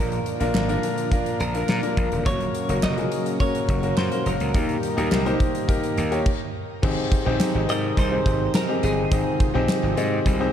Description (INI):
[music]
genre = 1980s-style pop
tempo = 105 BPM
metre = 4/4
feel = straight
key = Ab major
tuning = A4 = 440 Hz
[part]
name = direct-recorded clean electric guitar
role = melody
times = 0.0-9.7 s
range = Ab4 to Eb5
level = -30 LUFS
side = right 1 dB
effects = lush chorus, digital delay, shimmer reverb
[part]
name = clear grand piano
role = accompaniment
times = 0.0-10.5 s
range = Ab2 to G5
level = -25 LUFS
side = left 2 dB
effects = shimmer reverb
[part]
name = brassy analog pad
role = sustained chords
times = 0.0-10.5 s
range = Bb2 to G4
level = -31 LUFS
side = right 3 dB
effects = chorus, shimmer reverb
[part]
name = gritty slap bass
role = bass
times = 0.0-10.5 s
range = Eb1 to Bb2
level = -26 LUFS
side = equal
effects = overdrive
[part]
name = big rock drum kit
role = drums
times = 0.1-10.4 s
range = crash cymbal, hi-hat, kick drum, snare drum, tambourine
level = -25 LUFS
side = equal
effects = none
[part]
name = group handclap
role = percussion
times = 0.5-9.8 s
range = none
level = -40 LUFS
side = right 10 dB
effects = none
[sound]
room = moderate concert hall reverb, RT60 2.2 s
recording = dark, warm production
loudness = -20 LUFS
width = side -9 dB against mid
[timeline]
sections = 0.0-6.8 A section; 6.8-10.5 B section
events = stop 6.3-6.8; grand piano fill 10.3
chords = 0.0 Bb; 2.3 Gb; 4.5 Eb; 6.8 Abmaj7